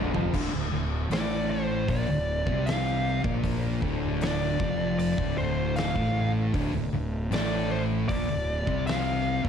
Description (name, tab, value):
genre	stoner and doom metal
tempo	77 BPM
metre	4/4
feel	straight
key	D minor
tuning	A4 = 440 Hz
part	thick fuzz guitar	riff	0.0-9.5 s	D2 to C4	-31 LUFS	left 9 dB	distortion
part	thick fuzz guitar	riff	0.0-9.5 s	D2 to C4	-32 LUFS	right 11 dB	distortion
part	fuzz fingered electric bass	bass	0.0-9.5 s	D1 to C2	-32 LUFS	equal	overdrive
part	oversized low-tuned drum kit	drums	0.1-9.5 s	crash cymbal, hi-hat, kick drum, snare drum, toms	-32 LUFS	equal	none
part	fuzz lead guitar	melody	1.1-9.4 s	C5 to F5	-31 LUFS	equal	distortion, slapback echo
room	light reverb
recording	dark, warm production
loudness	-25 LUFS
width	side -8 dB against mid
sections	0.3-9.5 A section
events	drum fill 0.0-0.3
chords	0.3 Dm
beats	| 0.33 1.11 1.88 2.66 | 3.44 4.21 4.99 5.76 | 6.54 7.32 8.09 8.87